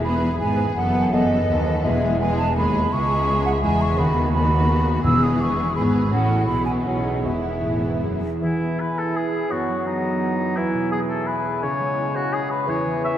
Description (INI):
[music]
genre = classical, dramatic, fast romantic movement for symphony orchestra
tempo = 168 BPM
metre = 3/4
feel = rubato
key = E major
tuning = A4 = 440 Hz
[part]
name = rich symphonic violin section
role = melody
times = 0.0-8.2 s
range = G#4 to E5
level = -39 LUFS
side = left 1 dB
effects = none
[part]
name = clear studio violin section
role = second line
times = 0.0-8.2 s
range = D#4 to A4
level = -33 LUFS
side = left 1 dB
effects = none
[part]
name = hollow concert flute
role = second line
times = 0.0-13.2 s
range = D#5 to E6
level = -25 LUFS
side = right 2 dB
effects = none
[part]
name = rich symphonic viola section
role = accompaniment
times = 0.0-8.2 s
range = G#3 to C#4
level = -26 LUFS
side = left 2 dB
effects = none
[part]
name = concert harp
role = arpeggios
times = 0.0-13.2 s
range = E2 to E5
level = -26 LUFS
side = right 1 dB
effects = none
[part]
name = rich chamber double bass section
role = bass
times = 0.0-8.2 s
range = E1 to D#2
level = -26 LUFS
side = equal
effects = none
[part]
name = rich symphonic cello section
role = bass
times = 0.0-8.4 s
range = C#2 to B2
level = -26 LUFS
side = equal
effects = none
[part]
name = timpani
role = percussion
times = 0.0-2.3, 5.0-5.5 s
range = E2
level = -32 LUFS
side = equal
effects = none
[part]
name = warm clarinet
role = second line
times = 8.4-13.2 s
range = B3 to E4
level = -30 LUFS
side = right 4 dB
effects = none
[part]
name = warm oboe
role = second line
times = 8.4-13.2 s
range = D#4 to E5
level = -25 LUFS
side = left 2 dB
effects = none
[part]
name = dark bassoon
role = accompaniment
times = 8.4-13.2 s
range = C#3 to F#3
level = -28 LUFS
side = left 2 dB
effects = none
[sound]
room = wet cathedral reverb, RT60 6.1 s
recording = in a vast, echoing space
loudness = -19 LUFS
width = side -11 dB against mid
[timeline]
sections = 0.0-8.4 A section; 8.4-13.2 A section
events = none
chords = 0.0 E; 0.8 B7/F#; 1.8 E; 2.9 C#m; 4.0 B/D#; 5.0 E; 6.1 F#m/A; 6.5 E/B; 6.8 B69; 7.2 E; 9.5 B7/F#; 10.6 E; 11.6 C#m